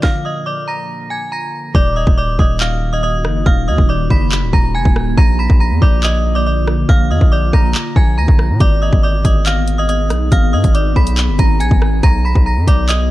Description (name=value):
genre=hip hop, drill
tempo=140 BPM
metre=4/4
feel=half-time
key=Eb harmonic minor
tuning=A4 = 440 Hz
part: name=metallic FM bell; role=melody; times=0.0-13.1 s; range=D5 to Cb7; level=-20 LUFS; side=equal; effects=chorus, low-pass filter
part: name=glassy digital keys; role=accompaniment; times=0.0-1.7 s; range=D3 to F4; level=-30 LUFS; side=equal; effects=chorus, low-pass filter
part: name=drill drum kit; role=drums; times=0.0-13.0 s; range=handclaps, hi-hat, kick drum, rim click, snare drum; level=-13 LUFS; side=equal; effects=none
part: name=ethereal airy pad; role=sustained chords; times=2.5-13.1 s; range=D3 to Ab4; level=-23 LUFS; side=equal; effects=ensemble chorus, built-in reverb, tremolo, low-pass filter
part: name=distorted 808-style bass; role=bass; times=1.7-13.1 s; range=D1 to Bb2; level=-15 LUFS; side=equal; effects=distortion
room=little or no reverb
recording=dark, warm production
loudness=-12 LUFS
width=side -16 dB against mid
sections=0.0-1.7 A section; 1.7-13.1 B section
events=stop 0.0-1.7; hi-hats muted 1.7-8.6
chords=0.0 Bb; 1.7 Ebm; 5.2 Bb; 8.6 Abm; 12.0 B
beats=| 0.03 0.46 0.89 1.32 | 1.75 2.17 2.60 3.03 | 3.46 3.89 4.32 4.75 | 5.17 5.60 6.03 6.46 | 6.89 7.32 7.75 8.18 | 8.60 9.03 9.46 9.89 | 10.32 10.75 11.18 11.60 | 12.03 12.46 12.89